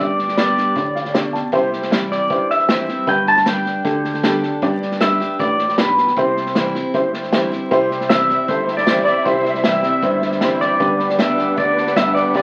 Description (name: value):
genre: honky-tonk and classic country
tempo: 155 BPM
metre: 4/4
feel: straight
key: C major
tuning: A4 = 440 Hz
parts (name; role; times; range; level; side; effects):
- pedal steel guitar; melody; 0.0-12.4 s; B4 to A5; -20 LUFS; equal; none
- honky-tonk upright piano; accompaniment; 0.0-12.4 s; D4 to A5; -24 LUFS; equal; none
- picked steel-string acoustic guitar; accompaniment; 0.0-12.4 s; G2 to G4; -27 LUFS; equal; none
- fingered electric bass; bass; 0.0-12.4 s; G1 to G2; -36 LUFS; equal; none
- unplugged drum kit; drums; 0.2-12.4 s; hi-hat, kick drum, snare drum; -25 LUFS; equal; none
- dark studio violin section; sustained chords; 7.7-12.4 s; G3 to E5; -25 LUFS; equal; none
room: wet club ambience, RT60 0.5 s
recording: very old 78 rpm record, vinyl crackle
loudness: -17 LUFS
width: mono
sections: 0.0-7.7 A section; 7.7-12.4 A section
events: honky-tonk piano fill 0.8-1.5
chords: 0.0 G; 1.5 C; 3.1 G; 6.2 C; 10.8 G